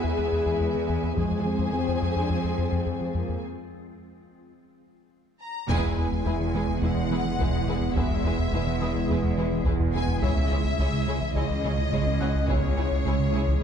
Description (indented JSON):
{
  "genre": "cinematic, hybrid orchestral and electronic film score",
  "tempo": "106 BPM",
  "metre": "4/4",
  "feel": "straight",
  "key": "unclear",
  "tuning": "A4 = 439 Hz",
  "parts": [
    { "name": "warm symphonic violin section", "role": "second line", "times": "0.0-13.4 s", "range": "G#4 to G#5", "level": "-36 LUFS", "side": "left 2 dB", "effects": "none" },
    { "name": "warm symphonic viola section", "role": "accompaniment", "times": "0.0-13.4 s", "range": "G#3 to B4", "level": "-36 LUFS", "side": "right 3 dB", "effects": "none" },
    { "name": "glassy FM pad", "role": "sustained chords", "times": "0.0-13.6 s", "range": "G#3 to G#4", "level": "-33 LUFS", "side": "right 1 dB", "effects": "ensemble chorus, built-in reverb" },
    { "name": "mellow French horn section", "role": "sustained chords", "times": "0.0-13.6 s", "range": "G#3 to G#4", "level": "-33 LUFS", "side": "left 4 dB", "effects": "none" },
    { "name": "harp-like synth pluck", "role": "arpeggios", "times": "0.0-13.6 s", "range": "C#3 to F4", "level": "-35 LUFS", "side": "equal", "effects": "chorus, tape echo" },
    { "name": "rubbery square bass", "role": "riff", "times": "0.0-13.6 s", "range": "C#2 to F3", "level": "-29 LUFS", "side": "left 2 dB", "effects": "none" },
    { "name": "rich symphonic cello section", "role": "bass", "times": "0.0-13.6 s", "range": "C#2 to F2", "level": "-33 LUFS", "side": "right 4 dB", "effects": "none" },
    { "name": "felt-muted upright piano", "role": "texture", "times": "0.0-1.2, 6.3-13.6 s", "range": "B3 to F#6", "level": "-43 LUFS", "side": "left 1 dB", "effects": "none" },
    { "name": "taiko ensemble", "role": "drums", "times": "1.2-2.3, 5.7-13.0 s", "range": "none", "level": "-32 LUFS", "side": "equal", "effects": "none" },
    { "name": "warm symphonic violin section", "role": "melody", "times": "5.4-13.6 s", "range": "C#5 to A#5", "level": "-33 LUFS", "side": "left 4 dB", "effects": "none" },
    { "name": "dark chamber double bass section", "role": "bass", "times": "5.7-13.6 s", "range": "E1 to C#2", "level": "-32 LUFS", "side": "right 5 dB", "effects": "none" },
    { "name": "pure sine sub bass", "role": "bass", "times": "5.7-13.6 s", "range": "E1 to C#2", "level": "-32 LUFS", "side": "equal", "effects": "none" }
  ],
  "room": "moderate scoring stage reverb, RT60 2.2 s",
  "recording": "dark, warm production",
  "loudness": "-23 LUFS",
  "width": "side -8 dB against mid",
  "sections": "0.0-5.7 A section; 5.7-13.6 B section",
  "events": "break 3.4-5.7; band accent 5.7-6.3",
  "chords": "0.0 E; 1.2 Fm; 5.7 E; 10.2 C#m",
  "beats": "0.04 0.60 | 1.17 1.74 2.30 2.87 | 3.43 4.00 4.57 5.13 | 5.70 6.26 6.83 7.39 | 7.96 8.53 9.09 9.66 | 10.22 10.79 11.36 11.92 | 12.49 13.06 13.62"
}